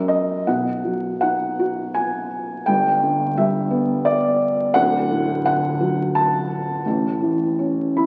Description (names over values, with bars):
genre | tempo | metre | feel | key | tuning
classical, lyrical solo piano | 85 BPM | 3/4 | uneven beats, rubato | unclear | A4 = 440 Hz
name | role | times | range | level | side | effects
felt-muted upright piano | solo | 0.0-8.1 s | D1 to B5 | -21 LUFS | equal | none
room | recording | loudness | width
wet concert hall reverb, RT60 1.9 s | very old 78 rpm record, vinyl crackle | -21 LUFS | mono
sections
0.5-8.1 A section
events
felt piano fill 0.0-0.5, 7.6-8.1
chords
0.5 B; 2.7 G; 4.8 D; 6.9 A